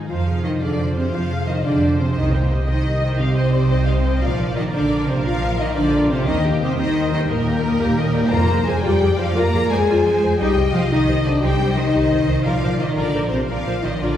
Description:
cinematic; 116 BPM (dotted quarters); 12/8; straight; F dorian; A4 = 440 Hz
rich studio violin section; second line; 0.0-14.2 s; Bb4 to Bb5; -27 LUFS; left 3 dB
rich symphonic viola section; accompaniment; 0.0-14.2 s; Eb4 to G5; -28 LUFS; equal
concert harp; arpeggios; 0.0-14.2 s; F2 to Eb5; -26 LUFS; left 2 dB
rich symphonic cello section; bass; 0.0-14.2 s; Bb2 to Bb3; -24 LUFS; right 2 dB
mellow French horn section; sustained chords; 0.1-14.2 s; Bb3 to Bb4; -22 LUFS; left 2 dB
warm studio double bass section; bass; 0.1-14.1 s; Bb1 to F2; -22 LUFS; right 1 dB
warm symphonic violin section; melody; 1.1-14.2 s; F4 to F5; -31 LUFS; left 2 dB
timpani; percussion; 8.3-8.8 s; F2; -27 LUFS; left 1 dB
wet scoring stage reverb, RT60 1.5 s; heard from further back in the room; -16 LUFS; side -10 dB against mid
0.1-14.2 A section
0.1 Fm; 2.2 Cm; 4.2 Bbadd9; 6.3 Eb; 8.3 Fm; 10.4 Cm; 12.5 Bbadd9

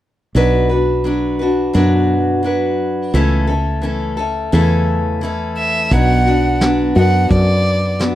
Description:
acoustic folk duo or small band; 86 BPM; 4/4; straight; B minor; A4 = 439 Hz
picked acoustic archtop guitar; accompaniment; 0.3-8.2 s; B2 to B4; -16 LUFS; left 1 dB
woody fretless electric bass; bass; 0.3-8.2 s; B1 to F#2; -17 LUFS; equal
rich violin; melody; 5.6-8.0 s; D5 to F#5; -18 LUFS; right 2 dB
soft brush drum kit; drums; 5.9-8.2 s; hi-hat, kick drum, snare drum; -18 LUFS; equal
little or no reverb; dry, close 1970s-style studio recording; -13 LUFS; side -13 dB against mid
0.4-5.9 A section; 5.9-8.2 B section
0.4 Bm; 3.1 A/C#; 5.9 Bm

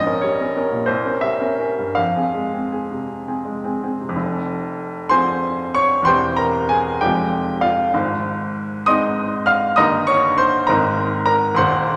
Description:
classical, romantic character piece for solo piano; 53-68 BPM (dotted quarters); 6/8; rubato; F minor; A4 = 440 Hz
clear baby grand piano; solo; 0.0-12.0 s; Eb1 to F6; -19 LUFS; equal
wet scoring stage reverb, RT60 1.9 s; -19 LUFS; mono
0.0-4.2 A section; 4.2-12.0 B section
0.0 Gdim; 0.9 C7b9; 2.0 Fm; 6.1 C/E; 7.0 Fm; 7.9 Ab; 9.8 Eb/G; 10.7 Ab

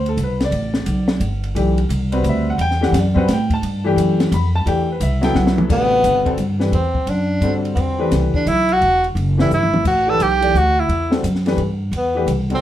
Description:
modal jazz; 174 BPM; 3/4; swing 64% on 8ths; A dorian; A4 = 441 Hz
warm grand piano; accompaniment; 0.0-12.6 s; C3 to B5; -21 LUFS; left 2 dB
upright bass; bass; 0.0-12.6 s; E1 to A2; -19 LUFS; equal
compact cocktail drum kit; drums; 0.1-12.6 s; crash cymbal, hi-hat, kick drum, ride cymbal, snare drum, toms; -24 LUFS; left 1 dB
breathy tenor saxophone; melody; 5.7-12.6 s; B3 to A4; -17 LUFS; right 1 dB
wet club reverb, RT60 0.5 s; heard from further back in the room; -15 LUFS; side -12 dB against mid
0.0-5.7 A section; 5.7-12.6 B section
drum fill 5.4-5.7, 9.5-9.8
0.0 Am9; 1.6 Emadd9; 5.7 Am9; 9.8 Emadd9/A

